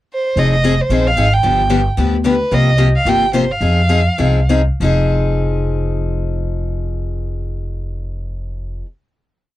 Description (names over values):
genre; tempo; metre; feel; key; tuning
acoustic string swing (jazz manouche); 189-223 BPM; 4/4; swing 55% on 8ths; F minor; A4 = 440 Hz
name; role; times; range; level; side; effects
warm violin; melody; 0.1-4.5 s; B4 to G5; -17 LUFS; right 2 dB; none
picked steel-string acoustic guitar; accompaniment; 0.4-8.9 s; C3 to Ab4; -19 LUFS; left 4 dB; none
upright bass; bass; 0.4-8.8 s; F1 to F2; -17 LUFS; equal; none
room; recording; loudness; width
light reverb; dry, close 1970s-style studio recording; -13 LUFS; side -15 dB against mid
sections
0.0-0.4 pickup bar; 0.4-4.8 A section; 4.8-7.3 final chord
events
slowing down 2.5-4.8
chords
0.4 Fm7; 1.4 G7; 2.5 C7sus4; 3.6 Fm7